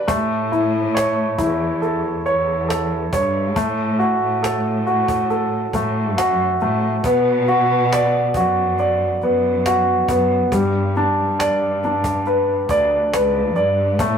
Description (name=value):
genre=pop ballad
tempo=69 BPM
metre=4/4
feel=straight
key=unclear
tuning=A4 = 440 Hz
part: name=clear grand piano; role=accompaniment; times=0.0-14.2 s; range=G3 to D5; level=-18 LUFS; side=equal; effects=none
part: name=warm studio string section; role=sustained chords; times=0.0-0.1, 14.0-14.2 s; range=A3 to C#4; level=-35 LUFS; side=equal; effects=none
part: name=rich studio cello section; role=bass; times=0.1-14.2 s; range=C#2 to B2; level=-23 LUFS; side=left 1 dB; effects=none
part: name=cajon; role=drums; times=0.1-14.2 s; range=none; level=-26 LUFS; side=equal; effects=none
room=moderate studio reverb, RT60 0.6 s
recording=rough rehearsal-room recording, warm saturation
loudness=-16 LUFS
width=side -7 dB against mid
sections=0.1-14.2 A section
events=none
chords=0.1 A; 3.6 F#m; 7.0 Bm; 10.5 G